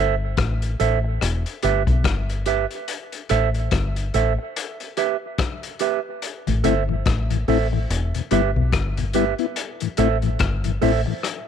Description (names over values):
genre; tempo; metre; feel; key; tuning
roots reggae; 72 BPM; 4/4; swing 59% on 16ths; A minor; A4 = 442 Hz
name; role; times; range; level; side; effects
mellow electric guitar; accompaniment; 0.0-11.1 s; G4 to E5; -25 LUFS; right 13 dB; tape echo
deep dub fingered electric bass; bass; 0.0-11.0 s; E1 to B1; -22 LUFS; left 1 dB; none
vintage drum kit; drums; 0.4-11.5 s; hi-hat, kick drum, rim click; -26 LUFS; left 4 dB; none
mellow tonewheel organ; accompaniment; 6.5-11.1 s; E2 to E4; -24 LUFS; left 14 dB; slow rotary speaker
room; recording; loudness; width
small room ambience; 1960s-style stereo with parts hard left and right; -20 LUFS; side -8 dB against mid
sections
0.0-11.5 A section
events
none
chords
0.0 Am; 1.2 Em; 2.9 Am; 4.5 Em; 6.2 Am; 7.9 Em; 9.6 Am